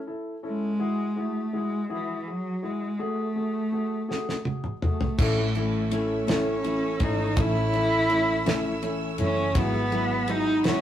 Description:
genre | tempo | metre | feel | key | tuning
six-eight pop ballad | 55 BPM (dotted quarters) | 6/8 | straight | unclear | A4 = 440 Hz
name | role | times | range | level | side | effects
warm concert grand piano | accompaniment | 0.1-10.8 s | G#3 to A4 | -30 LUFS | left 3 dB | none
rich cello | melody | 0.5-10.8 s | E3 to E4 | -27 LUFS | right 1 dB | none
damped 70s drum kit | drums | 4.1-10.8 s | crash cymbal, kick drum, ride cymbal, snare drum, toms | -27 LUFS | equal | none
clear studio string section | sustained chords | 5.2-10.8 s | A4 to E6 | -38 LUFS | equal | none
picked steel-string acoustic guitar | arpeggios | 5.2-10.8 s | G#2 to G#4 | -32 LUFS | right 4 dB | none
woody fretless electric bass | bass | 5.2-10.8 s | F#1 to A1 | -30 LUFS | equal | none
room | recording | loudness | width
wet studio reverb, RT60 0.6 s | rough rehearsal-room recording | -24 LUFS | side -11 dB against mid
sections
0.0-5.2 A section; 5.2-10.8 B section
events
drum fill 4.1-5.2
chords
0.0 A; 0.8 Eadd9/G#; 3.0 F#madd9/A; 5.2 A; 9.6 Eadd9/G#

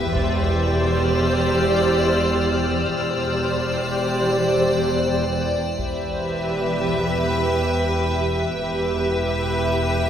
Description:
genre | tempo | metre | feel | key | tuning
cinematic, suspense film score | 85 BPM | 4/4 | straight | unclear | A4 = 440 Hz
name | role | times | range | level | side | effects
muted studio violin section | melody | 0.0-10.1 s | D5 to E5 | -30 LUFS | left 3 dB | none
muted studio violin section | second line | 0.0-10.1 s | B4 to C5 | -29 LUFS | left 1 dB | none
muted studio viola section | accompaniment | 0.0-10.1 s | G4 | -25 LUFS | right 2 dB | none
icy glass pad | sustained chords | 0.0-10.1 s | B4 to G5 | -25 LUFS | left 1 dB | chorus, built-in reverb
muted studio cello section | bass | 0.0-10.1 s | E2 | -27 LUFS | equal | none
muted studio double bass section | bass | 0.0-10.1 s | E1 | -26 LUFS | right 2 dB | none
taiko ensemble | drums | 0.1-1.5, 5.8-7.2 s | none | -32 LUFS | equal | none
muted studio violin section | texture | 0.2-5.4 s | E6 to F6 | -32 LUFS | left 5 dB | none
room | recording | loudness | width
wet concert hall reverb, RT60 2.2 s | recorded in a church or concert hall | -19 LUFS | side -9 dB against mid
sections
0.0-10.1 A section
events
none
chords
0.1 Cadd9/E; 5.8 Em

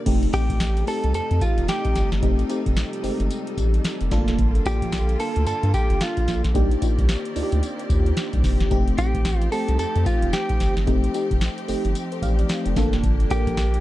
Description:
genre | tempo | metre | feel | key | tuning
R&B, new jack swing | 111 BPM | 4/4 | swing 61% on 16ths | unclear | A4 = 439 Hz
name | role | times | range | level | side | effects
FM electric piano with soft pad layer | accompaniment | 0.0-13.8 s | Ab3 to F5 | -27 LUFS | left 1 dB | chorus, phaser
bright studio string section | sustained chords | 0.0-13.8 s | C3 to D5 | -34 LUFS | equal | none
round analog bass | bass | 0.1-13.8 s | F1 to G2 | -23 LUFS | equal | none
booming analog drum machine | drums | 0.1-13.8 s | crash cymbal, hi-hat, kick drum, snare drum, tambourine | -23 LUFS | equal | none
direct-recorded clean electric guitar | melody | 0.3-13.8 s | F4 to A4 | -27 LUFS | right 1 dB | tape echo
room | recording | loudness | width
little or no reverb | dark, warm production | -19 LUFS | side -15 dB against mid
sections
0.1-13.8 A section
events
none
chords
0.1 F9; 4.1 Gm9; 6.5 Cm9; 8.7 F9; 12.8 Gm9

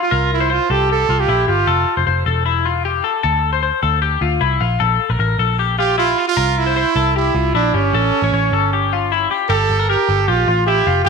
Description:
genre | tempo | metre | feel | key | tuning
jangly indie pop | 153 BPM | 4/4 | straight | unclear | A4 = 444 Hz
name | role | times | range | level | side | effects
brilliant trumpet | melody | 0.0-2.0, 5.8-11.1 s | C#4 to A4 | -18 LUFS | right 8 dB | none
twelve-string electric guitar | arpeggios | 0.0-11.1 s | E4 to C#5 | -18 LUFS | left 10 dB | lush chorus
vintage muted picked electric bass | bass | 0.1-11.1 s | E1 to D2 | -19 LUFS | equal | none
room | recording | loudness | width
wet echo chamber reverb, RT60 1.4 s, studio reverb | 1960s-style stereo with parts hard left and right | -14 LUFS | side -5 dB against mid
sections
0.0-9.5 A section; 9.5-11.1 B section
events
none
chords
0.1 C7; 1.7 Fmaj7; 3.2 Dm7; 4.6 Bb5; 6.4 C7; 7.9 A7; 9.5 Gm

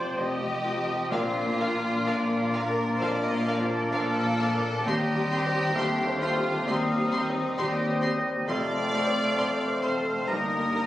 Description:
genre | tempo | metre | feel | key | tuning
classical, romantic movement for piano and orchestra | 66 BPM | 4/4 | rubato | Bb major | A4 = 436 Hz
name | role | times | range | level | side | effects
clear concert grand piano | melody | 0.0-10.9 s | Bb1 to D6 | -30 LUFS | left 1 dB | none
warm studio violin section | melody | 0.0-10.8 s | D5 to C6 | -38 LUFS | left 1 dB | none
clear studio violin section | second line | 0.0-10.9 s | Eb4 to F5 | -32 LUFS | left 1 dB | none
rich studio viola section | accompaniment | 0.0-10.8 s | C4 to Eb5 | -37 LUFS | equal | none
rich studio double bass section | bass | 0.0-10.9 s | F1 to Eb2 | -36 LUFS | equal | none
warm studio cello section | bass | 0.0-10.9 s | Eb2 to Bb2 | -34 LUFS | equal | none
bright oboe | second line | 1.1-10.9 s | D5 to F5 | -32 LUFS | right 1 dB | none
clear clarinet | second line | 1.1-10.9 s | Bb3 to F4 | -38 LUFS | equal | none
small flute group | second line | 1.1-10.9 s | C6 to F6 | -37 LUFS | left 2 dB | none
warm bassoon | accompaniment | 1.1-10.9 s | F3 to C4 | -35 LUFS | equal | none
clear French horn section | sustained chords | 1.1-10.9 s | G3 to D4 | -34 LUFS | left 2 dB | none
room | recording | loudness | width
wet recital hall reverb, RT60 1.8 s | recorded on a phone in the room, studio reverb, compression | -24 LUFS | side -14 dB against mid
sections
0.0-1.1 A section; 1.1-10.9 B section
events
none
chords
0.0 F5; 1.1 Bb; 4.8 Cm/Eb; 8.5 F; 10.3 Eb/G

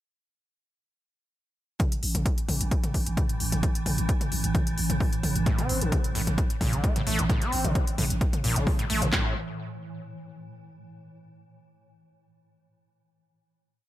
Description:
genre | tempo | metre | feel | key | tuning
driving peak-time techno | 131 BPM | 4/4 | straight | A minor | A4 = 440 Hz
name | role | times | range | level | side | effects
swarming drone | drone | 2.5-9.2 s | A2 to E3 | -34 LUFS | right 2 dB | built-in reverb, sidechain pumping
techno drum kit | drums | 1.8-9.2 s | handclaps, kick drum, snare drum | -26 LUFS | equal | gated reverb
techno drum kit | drums | 1.8-9.1 s | hi-hat, toms | -31 LUFS | left 1 dB | sidechain pumping on hats, sidechain pumping on toms, gated reverb
growling 808-style bass | bass | 2.0-9.3 s | A1 | -31 LUFS | equal | overdrive, sidechain pumping, low-pass filter
overdriven acid bass | riff | 5.5-9.3 s | A2 to C4 | -30 LUFS | equal | distortion, analog chorus, sidechain pumping, ping-pong delay
room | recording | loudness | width
light reverb | bright 1980s-style digital production | -24 LUFS | side -14 dB against mid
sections
1.8-9.1 groove; 9.1-11.0 final note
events
none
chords
1.8 A5; 9.1 N.C.

